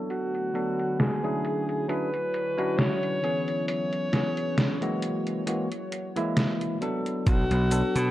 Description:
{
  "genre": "vaporwave",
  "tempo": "67 BPM",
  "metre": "4/4",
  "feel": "swing 54% on 16ths",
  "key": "B dorian",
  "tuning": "A4 = 445 Hz",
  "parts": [
    { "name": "barky tine electric piano", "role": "accompaniment", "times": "0.0-8.1 s", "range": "E3 to A4", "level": "-29 LUFS", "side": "equal", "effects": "wide subtle chorus" },
    { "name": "warbly tape-like pad", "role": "sustained chords", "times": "0.0-7.2 s", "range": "D3 to C#5", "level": "-36 LUFS", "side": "equal", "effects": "chorus, built-in reverb" },
    { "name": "clear alto saxophone", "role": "melody", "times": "0.1-8.1 s", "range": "F#4 to C#5", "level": "-30 LUFS", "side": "left 1 dB", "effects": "tape echo" },
    { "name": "detuned 8-bit digital drum machine", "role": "drums", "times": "0.1-8.1 s", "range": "cabasa, hi-hat, snare drum", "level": "-28 LUFS", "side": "equal", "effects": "overdrive" },
    { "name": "gritty slap bass", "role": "bass", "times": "7.3-8.1 s", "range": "B1 to B2", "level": "-24 LUFS", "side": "equal", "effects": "overdrive" },
    { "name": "electronic kick drum", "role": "drums", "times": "7.3-7.5 s", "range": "none", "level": "-23 LUFS", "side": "equal", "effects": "overdrive" }
  ],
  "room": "moderate lush hall reverb, RT60 2.2 s",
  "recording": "dark, warm production, low-pass filter",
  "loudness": "-25 LUFS",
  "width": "side -14 dB against mid",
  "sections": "0.0-7.3 A section",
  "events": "filter sweep 0.0-7.3",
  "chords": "0.1 Bm7; 1.4 E13; 3.7 C#m7; 5.0 F#9; 7.3 Bm7",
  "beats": "| 0.10 1.00 1.89 2.79 | 3.68 4.58 5.47 6.37 | 7.26"
}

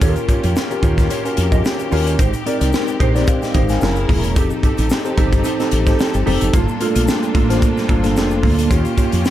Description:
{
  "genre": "polished 1980s jazz-funk pop",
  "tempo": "110 BPM",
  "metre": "4/4",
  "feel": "swing 54% on 16ths",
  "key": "unclear",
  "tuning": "A4 = 440 Hz",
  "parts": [
    { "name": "mellow tine electric piano", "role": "accompaniment", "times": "0.0-9.3 s", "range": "A3 to Ab5", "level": "-20 LUFS", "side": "left 1 dB", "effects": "slow stereo tremolo, analog chorus" },
    { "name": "bright studio string section", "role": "sustained chords", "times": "0.0-9.3 s", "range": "Eb3 to A#4", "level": "-27 LUFS", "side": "left 2 dB", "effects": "none" },
    { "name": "mellow electric guitar", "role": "riff", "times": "0.0-9.3 s", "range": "A#3 to Eb5", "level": "-25 LUFS", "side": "right 7 dB", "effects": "analog chorus" },
    { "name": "woody fretless electric bass", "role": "bass", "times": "0.0-9.2 s", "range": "E1 to F2", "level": "-18 LUFS", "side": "equal", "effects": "analog chorus" },
    { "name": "crisp fusion drum kit", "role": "drums", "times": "0.0-9.3 s", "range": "hi-hat, kick drum, snare drum", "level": "-18 LUFS", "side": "equal", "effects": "none" },
    { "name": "egg shaker", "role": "percussion", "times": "0.0-9.3 s", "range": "none", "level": "-38 LUFS", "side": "left 6 dB", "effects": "none" }
  ],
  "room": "light reverb, small room ambience",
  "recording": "dark, warm production",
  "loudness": "-14 LUFS",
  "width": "side -12 dB against mid",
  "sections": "0.0-9.3 A section",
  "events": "none",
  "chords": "0.0 Eb9; 2.2 Abmaj7; 3.8 F#9; 4.4 F9; 6.5 Gm9; 8.7 Eb9",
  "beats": "| 0.02 0.56 1.10 1.65 | 2.19 2.73 3.28 3.82 | 4.36 4.91 5.45 5.99 | 6.54 7.08 7.62 8.16 | 8.71 9.25"
}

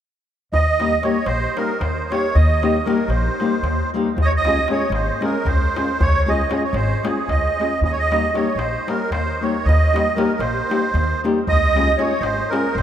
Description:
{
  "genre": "balkan folk, Balkan wedding band",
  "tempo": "230 BPM (eighths)",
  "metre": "7/8",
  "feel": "straight",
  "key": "Eb mixolydian",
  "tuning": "A4 = 440 Hz",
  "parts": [
    { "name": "musette accordion", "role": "melody", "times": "0.5-12.8 s", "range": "Ab4 to Eb5", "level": "-20 LUFS", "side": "right 3 dB", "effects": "none" },
    { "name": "upright bass", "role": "bass", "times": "0.5-12.8 s", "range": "Ab1 to Eb2", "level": "-21 LUFS", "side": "equal", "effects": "none" },
    { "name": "darbuka", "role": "percussion", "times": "0.5-12.8 s", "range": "none", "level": "-25 LUFS", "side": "left 1 dB", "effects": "none" },
    { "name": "flamenco guitar", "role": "accompaniment", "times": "0.8-12.7 s", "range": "G3 to Ab4", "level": "-23 LUFS", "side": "left 3 dB", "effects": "none" }
  ],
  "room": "wet cathedral reverb, RT60 5.9 s",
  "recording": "in a vast, echoing space",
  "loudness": "-17 LUFS",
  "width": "side -10 dB against mid",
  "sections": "0.5-12.8 A section",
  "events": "none",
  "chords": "0.5 Eb; 4.2 Db; 7.8 Eb; 11.5 Db",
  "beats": "| 0.53 0.79 1.05 1.31 1.57 1.83 2.09 | 2.35 2.62 2.88 3.14 3.40 3.66 3.92 | 4.18 4.44 4.70 4.96 5.22 5.49 5.75 | 6.01 6.27 6.53 6.79 7.05 7.31 7.57 | 7.83 8.09 8.36 8.62 8.88 9.14 9.40 | 9.66 9.92 10.18 10.44 10.71 10.97 11.23 | 11.49 11.75 12.01 12.27 12.53 12.79"
}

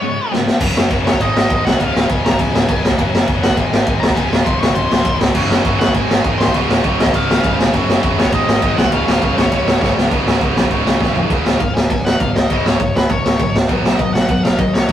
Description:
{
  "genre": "punk rock",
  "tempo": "202 BPM",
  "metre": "4/4",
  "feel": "straight",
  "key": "Db major, Db mixolydian from 11.3 s",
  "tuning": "A4 = 441 Hz",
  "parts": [
    { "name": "high-gain lead guitar", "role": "melody", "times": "0.0-14.9 s", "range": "Cb5 to Db6", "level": "-22 LUFS", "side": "left 1 dB", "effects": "distortion" },
    { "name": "high-gain distorted guitar", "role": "riff", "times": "0.0-11.3 s", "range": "Db2 to Ab4", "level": "-26 LUFS", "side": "right 2 dB", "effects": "distortion" },
    { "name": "overdriven electric guitar", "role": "riff", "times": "0.0-0.5, 5.3-14.9 s", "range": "Db2 to Cb4", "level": "-22 LUFS", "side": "right 5 dB", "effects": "none" },
    { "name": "tight distorted guitar", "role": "riff", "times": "0.0-14.9 s", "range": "Db2 to Cb4", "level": "-23 LUFS", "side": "left 5 dB", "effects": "distortion" },
    { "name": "raw garage drum kit", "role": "drums", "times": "0.3-14.9 s", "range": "crash cymbal, kick drum, ride cymbal, snare drum, toms", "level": "-15 LUFS", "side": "equal", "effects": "none" },
    { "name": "modern bright picked electric bass", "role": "bass", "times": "0.6-14.9 s", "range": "Db1 to Db2", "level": "-23 LUFS", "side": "equal", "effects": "none" }
  ],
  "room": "light reverb",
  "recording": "rough rehearsal-room recording, warm saturation",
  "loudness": "-13 LUFS",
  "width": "side -11 dB against mid",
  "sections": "0.6-10.1 A section; 10.1-11.3 B section; 11.3-14.9 C section",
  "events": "break 0.0-0.6; drum fill 0.3, 9.8, 11.0",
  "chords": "0.0 Db7; 0.6 Gb; 1.2 Ab; 1.8 Db; 3.0 Gb; 3.6 Ab; 4.2 Db; 5.4 Gb; 6.0 Ab; 6.5 Db; 7.7 Gb; 8.3 Ab; 8.9 Db; 11.3 Db5; 13.7 Cb5",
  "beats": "0.02 0.32 | 0.61 0.91 1.21 1.50 | 1.80 2.10 2.39 2.69 | 2.98 3.28 3.58 3.87 | 4.17 4.47 4.76 5.06 | 5.36 5.65 5.95 6.25 | 6.54 6.84 7.14 7.44 | 7.73 8.03 8.33 8.62 | 8.92 9.22 9.52 9.81 | 10.11 10.41 10.71 11.01 | 11.30 11.60 11.90 12.20 | 12.50 12.80 13.10 13.39 | 13.69 13.99 14.29 14.59 | 14.89"
}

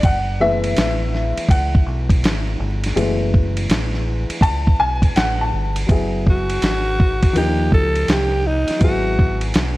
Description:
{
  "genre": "hip hop, jazz-hop",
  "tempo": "82 BPM",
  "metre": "4/4",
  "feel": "swing 64% on 16ths",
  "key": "F# minor",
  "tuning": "A4 = 445 Hz",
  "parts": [
    { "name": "dark upright piano", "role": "accompaniment", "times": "0.0-9.8 s", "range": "E3 to A5", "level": "-22 LUFS", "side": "left 2 dB", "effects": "none" },
    { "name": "deep dub fingered electric bass", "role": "bass", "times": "0.0-9.8 s", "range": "F#1 to D#2", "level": "-22 LUFS", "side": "equal", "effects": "none" },
    { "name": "dusty soul sampler-style drum kit", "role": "drums", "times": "0.0-9.8 s", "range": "hi-hat, kick drum, ride cymbal, snare drum", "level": "-19 LUFS", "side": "equal", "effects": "none" },
    { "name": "growling alto saxophone", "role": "melody", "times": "6.3-9.5 s", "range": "D#4 to A4", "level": "-21 LUFS", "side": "equal", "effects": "none" }
  ],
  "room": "light reverb, digital ambience",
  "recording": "vinyl crackle",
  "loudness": "-15 LUFS",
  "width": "side -18 dB against mid",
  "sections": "0.0-5.9 A section; 5.9-9.8 B section",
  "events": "upright piano solo 0.0-5.9",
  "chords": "0.0 F#m11; 5.9 F#9sus4; 7.4 D#7; 8.8 Eadd9/G#",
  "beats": "| 0.04 0.77 1.50 2.23 | 2.96 3.70 4.43 5.16 | 5.89 6.62 7.35 8.09 | 8.82 9.55"
}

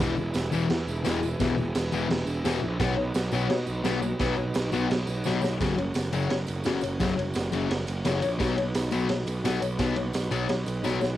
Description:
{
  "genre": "garage rock duo or trio",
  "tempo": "172 BPM",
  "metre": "4/4",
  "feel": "straight",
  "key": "F# mixolydian",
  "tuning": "A4 = 440 Hz",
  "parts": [
    { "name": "overdriven combo organ", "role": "sustained chords", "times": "0.0-11.2 s", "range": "C#4 to B4", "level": "-38 LUFS", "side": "right 2 dB", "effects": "cassette tape" },
    { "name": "fuzz guitar", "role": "riff", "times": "0.0-11.0 s", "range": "E2 to B3", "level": "-27 LUFS", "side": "left 5 dB", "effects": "distortion, cassette tape" },
    { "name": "fuzz picked electric bass", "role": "bass", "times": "0.0-11.2 s", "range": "E1 to B2", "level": "-30 LUFS", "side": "right 2 dB", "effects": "overdrive" },
    { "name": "raw garage drum kit", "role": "drums", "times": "0.0-11.1 s", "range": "crash cymbal, kick drum, ride cymbal, snare drum", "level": "-30 LUFS", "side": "right 2 dB", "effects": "cassette tape" },
    { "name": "tambourine", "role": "percussion", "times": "0.2-11.1 s", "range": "none", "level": "-46 LUFS", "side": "right 12 dB", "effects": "none" }
  ],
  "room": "light reverb",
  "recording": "home recording on cassette",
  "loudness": "-24 LUFS",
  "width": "side -13 dB against mid",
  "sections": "0.0-5.6 A section; 5.6-11.2 B section",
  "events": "drum fill 5.2-5.6, 10.8-11.2",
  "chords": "0.0 E; 2.8 B; 5.6 F#; 8.4 B",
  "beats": "| 0.00 0.35 0.70 1.05 | 1.40 1.75 2.10 2.45 | 2.80 3.15 3.50 3.85 | 4.20 4.55 4.90 5.25 | 5.60 5.95 6.30 6.65 | 7.00 7.35 7.70 8.05 | 8.40 8.75 9.10 9.45 | 9.80 10.15 10.50 10.85"
}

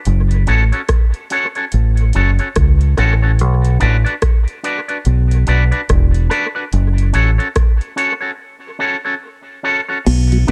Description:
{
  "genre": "roots reggae",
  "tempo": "72 BPM",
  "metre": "4/4",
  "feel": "swing 60% on 16ths",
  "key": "unclear",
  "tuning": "A4 = 440 Hz",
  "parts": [
    { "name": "deep dub fingered electric bass", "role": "bass", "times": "0.1-10.5 s", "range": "E1 to C#2", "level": "-15 LUFS", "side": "equal", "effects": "none" },
    { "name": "booming analog drum machine", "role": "drums", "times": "0.1-10.5 s", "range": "crash cymbal, hi-hat, kick drum, rim click", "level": "-19 LUFS", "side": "equal", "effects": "dub echo" },
    { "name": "electric guitar with an envelope filter", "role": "accompaniment", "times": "0.5-10.5 s", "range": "C#4 to D5", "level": "-22 LUFS", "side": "equal", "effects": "tape echo" },
    { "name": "semi-hollow electric guitar", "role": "riff", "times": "10.1-10.5 s", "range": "B2", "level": "-18 LUFS", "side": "equal", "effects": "analog chorus" },
    { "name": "mellow tonewheel organ", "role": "accompaniment", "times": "10.3-10.5 s", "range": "B2 to D4", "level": "-21 LUFS", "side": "equal", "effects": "slow rotary speaker" }
  ],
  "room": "little or no reverb",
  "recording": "none",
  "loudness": "-15 LUFS",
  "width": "mono",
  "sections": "0.0-10.1 A section",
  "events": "break 8.4-10.1",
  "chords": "0.1 F#m; 3.4 Bm; 6.7 F#m",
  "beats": "| 0.06 0.89 1.73 2.56 | 3.39 4.23 5.06 5.90 | 6.73 7.57 8.40 9.23 | 10.07"
}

